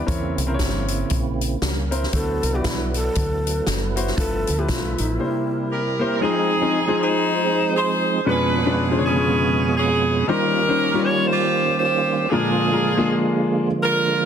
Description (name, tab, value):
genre	uptempo gospel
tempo	118 BPM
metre	4/4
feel	swing 59% on 8ths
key	C major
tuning	A4 = 441 Hz
part	percussive tonewheel organ	sustained chords	0.0-14.3 s	F2 to E5	-25 LUFS	right 4 dB	slow rotary speaker, overdrive, chorus vibrato
part	warm grand piano	accompaniment	0.1-13.7 s	G2 to D5	-23 LUFS	left 4 dB	none
part	deep dub fingered electric bass	bass	0.1-5.2 s	F#1 to E2	-25 LUFS	equal	none
part	swinging big-band drum kit	drums	0.1-5.1 s	hi-hat, kick drum, snare drum	-26 LUFS	left 1 dB	none
part	breathy mellow shakuhachi	melody	2.1-5.7 s	E4 to A4	-28 LUFS	equal	tape echo
part	clear saxophone section	melody	5.7-14.3 s	Cb4 to Db5	-20 LUFS	right 1 dB	none
room	light reverb, small room reverb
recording	dense, heavily limited modern master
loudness	-18 LUFS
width	side -8 dB against mid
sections	0.0-6.2 A section; 6.2-14.3 B section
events	none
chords	0.1 C7b9; 2.1 D13; 4.2 G13; 5.2 C7; 6.2 Fm7; 8.3 Db7b9/F; 10.3 Eb13; 12.3 Bb7